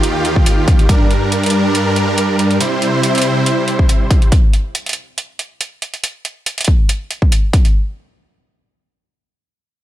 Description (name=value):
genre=heavy wobble dubstep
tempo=140 BPM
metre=4/4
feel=swing 54% on 16ths, half-time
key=unclear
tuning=A4 = 441 Hz
part: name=supersaw chords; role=sustained chords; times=0.0-4.3 s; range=Eb2 to C5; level=-14 LUFS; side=equal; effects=sidechain pumping
part: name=electronic hi-hat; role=drums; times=0.0-7.7 s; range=none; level=-21 LUFS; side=right 2 dB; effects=small room reverb
part: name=electronic kick drum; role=drums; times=0.4-1.0, 3.8-7.6 s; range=none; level=-12 LUFS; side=equal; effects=small room reverb
room=light reverb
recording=none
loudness=-12 LUFS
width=side -13 dB against mid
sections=0.0-7.7 A section; 7.7-9.8 B section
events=none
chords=0.0 Ebadd9; 0.9 Gm; 2.6 C; 4.3 N.C.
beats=0.03 0.46 | 0.89 1.32 1.75 2.18 | 2.60 3.03 3.46 3.89 | 4.32 4.75 5.18 5.61 | 6.03 6.46 6.89 7.32